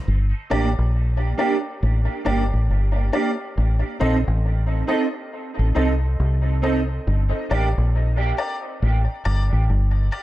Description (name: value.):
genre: reggae.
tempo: 69 BPM.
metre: 4/4.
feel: swing 61% on 16ths.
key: G minor.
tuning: A4 = 440 Hz.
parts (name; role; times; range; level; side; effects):
deep dub fingered electric bass; bass; 0.1-10.1 s; G1 to C2; -19 LUFS; equal; none.
mellow electric guitar; accompaniment; 0.5-7.7 s; Bb3 to A4; -26 LUFS; right 4 dB; ensemble chorus, high-pass filter, dub echo.
clear upright piano; stabs; 0.5-10.2 s; D4 to Eb5; -28 LUFS; left 3 dB; high-pass filter, dub echo.
room: light reverb, studio reverb.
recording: echo-heavy mix.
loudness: -19 LUFS.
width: side -15 dB against mid.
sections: 0.1-10.2 A section.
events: none.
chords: 0.1 Gm; 3.6 Adim; 7.1 Gm.